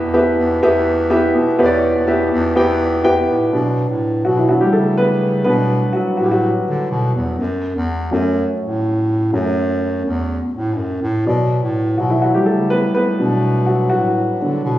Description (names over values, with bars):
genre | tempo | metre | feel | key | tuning
piano-driven pop | 124 BPM | 4/4 | straight | B minor | A4 = 439 Hz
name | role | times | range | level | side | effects
warm upright piano | accompaniment | 0.0-14.8 s | B2 to G5 | -16 LUFS | equal | none
mellow bass clarinet | bass | 0.0-14.8 s | E2 to D3 | -20 LUFS | equal | none
room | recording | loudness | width
light reverb | recorded on a phone in the room, studio reverb | -14 LUFS | side -14 dB against mid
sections
0.0-3.5 A section; 3.5-11.3 B section; 11.3-14.8 C section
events
upright piano solo 3.5-11.3, 11.3-14.8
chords
0.0 Em; 3.5 Bm; 7.4 F#m; 11.3 Bm